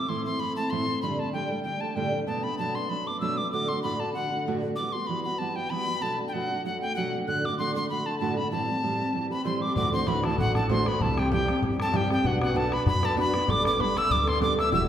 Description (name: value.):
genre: celtic folk, Celtic reel.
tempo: 192 BPM.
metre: 4/4.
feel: swing 54% on 8ths.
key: unclear.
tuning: A4 = 441 Hz.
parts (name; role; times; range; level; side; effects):
tin whistle; melody; 0.0-14.9 s; F#5 to F#6; -28 LUFS; left 1 dB; none.
fingerpicked steel-string acoustic guitar; accompaniment; 0.0-14.9 s; D2 to B4; -28 LUFS; right 2 dB; none.
mellow accordion; second line; 9.3-14.9 s; F#4 to E5; -34 LUFS; left 2 dB; none.
upright bass; bass; 9.8-14.9 s; E1 to G2; -31 LUFS; left 1 dB; none.
bodhran; percussion; 9.8-14.8 s; none; -31 LUFS; left 2 dB; none.
room: wet recital hall reverb, RT60 1.8 s.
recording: recorded in a church or concert hall.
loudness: -24 LUFS.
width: side -10 dB against mid.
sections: 0.0-9.8 A section; 9.8-14.9 B section.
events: none.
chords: 0.0 Am; 1.0 Dsus4; 2.3 Bm7; 3.5 D; 4.8 Emadd9; 6.0 Bm7; 7.3 D; 8.5 Am7; 9.8 Dadd9; 11.0 C; 12.2 Bm; 13.5 Gadd9.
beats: 0.09 0.40 0.71 | 1.02 1.33 1.65 1.96 | 2.27 2.59 2.90 3.21 | 3.52 3.84 4.15 4.46 | 4.77 5.09 5.40 5.71 | 6.02 6.34 6.65 6.96 | 7.27 7.58 7.90 8.21 | 8.52 8.83 9.14 9.45 | 9.77 10.08 10.39 10.70 | 11.01 11.32 11.63 11.94 | 12.24 12.55 12.86 13.17 | 13.48 13.79 14.10 14.41 | 14.72.